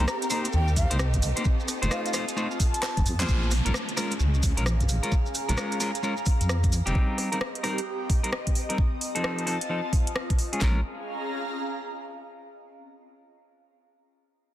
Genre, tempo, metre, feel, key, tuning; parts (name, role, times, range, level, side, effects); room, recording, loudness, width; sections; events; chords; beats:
UK garage, two-step garage; 131 BPM; 4/4; swing 63% on 16ths; Bb dorian; A4 = 437 Hz
mellow hollow concert flute; melody; 0.0-3.1 s; F5 to Bb5; -36 LUFS; equal; dub echo
rich studio violin section; sustained chords; 0.0-3.3 s; C4 to Bb4; -38 LUFS; left 1 dB; sidechain pumping
clean electric guitar; stabs; 0.0-10.8 s; F3 to C5; -32 LUFS; left 1 dB; low-pass filter, dub echo
deep soft wobble bass; bass; 0.0-6.9, 10.6-10.8 s; Eb1 to Bb2; -24 LUFS; equal; chorus
airy breathy pad; texture; 0.0-12.4 s; C4 to Bb5; -34 LUFS; equal; chorus, phaser, sidechain pumping
garage drum kit; drums; 0.1-10.6 s; handclaps, hi-hat, rim click; -32 LUFS; equal; studio reverb, soft clipping on snare
maracas; percussion; 0.1-6.9 s; -36 LUFS; right 2 dB
garage drum kit; drums; 0.8-10.7 s; handclaps, kick drum, snare drum; -24 LUFS; equal; studio reverb
downlifter; sound effects; 3.3-6.9 s; -37 LUFS; equal
light reverb, digital ambience; dense, heavily limited modern master; -24 LUFS; side -13 dB against mid
0.0-3.3 A section; 3.3-10.6 B section; 10.6-12.4 C section
drop 0.0-3.3; drum fill 2.8-3.3; band accent 3.2
0.0 Cm7; 1.5 F7; 3.3 Bbm7; 7.0 Cm7; 8.8 F7; 10.6 Bbm7
0.08 0.54 0.99 | 1.45 1.91 2.37 2.83 | 3.29 3.74 4.20 4.66 | 5.12 5.58 6.03 6.49 | 6.95 7.41 7.87 8.32 | 8.78 9.24 9.70 10.16 | 10.61 11.07 11.53 11.99